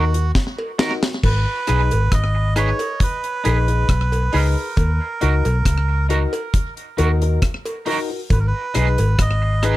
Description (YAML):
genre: roots reggae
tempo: 68 BPM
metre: 4/4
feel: straight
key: G# minor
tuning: A4 = 440 Hz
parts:
  - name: melodica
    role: melody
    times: 0.0-9.8 s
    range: F#4 to D#5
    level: -26 LUFS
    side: right 4 dB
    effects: tape echo
  - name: twangy electric guitar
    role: accompaniment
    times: 0.0-9.8 s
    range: D#4 to B4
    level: -27 LUFS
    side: right 5 dB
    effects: tremolo, tape echo
  - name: dark upright piano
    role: stabs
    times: 0.0-9.8 s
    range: D#4 to B4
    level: -25 LUFS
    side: left 6 dB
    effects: none
  - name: vintage muted fingered electric bass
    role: bass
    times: 0.0-9.8 s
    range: G#1 to D#2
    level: -18 LUFS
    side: equal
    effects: none
  - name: deep reggae drum kit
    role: drums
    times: 0.1-9.8 s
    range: crash cymbal, hi-hat, kick drum, rim click, snare drum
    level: -21 LUFS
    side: equal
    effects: slapback echo
  - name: cowbell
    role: percussion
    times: 0.6-9.2 s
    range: none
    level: -29 LUFS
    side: right 1 dB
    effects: none
room: little or no reverb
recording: none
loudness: -17 LUFS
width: side -16 dB against mid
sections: 0.0-1.2 A section; 1.2-9.8 B section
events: drum fill 0.4-1.2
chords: 0.0 D#m; 1.2 G#m; 4.8 D#m; 8.3 G#m